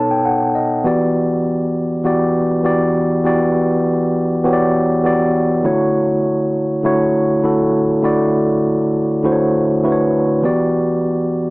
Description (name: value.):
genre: soul.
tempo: 100 BPM.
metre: 4/4.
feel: straight.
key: E dorian.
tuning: A4 = 440 Hz.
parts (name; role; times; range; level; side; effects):
mellow tine electric piano; solo; 0.0-11.5 s; B2 to A5; -14 LUFS; equal; fast stereo tremolo.
room: light reverb.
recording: small speaker sound.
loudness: -14 LUFS.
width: side -24 dB against mid.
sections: 0.9-11.5 A section.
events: tine electric piano fill 0.0-0.9.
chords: 0.0 B7; 0.9 Em7; 5.6 Dmaj7; 10.4 Em7.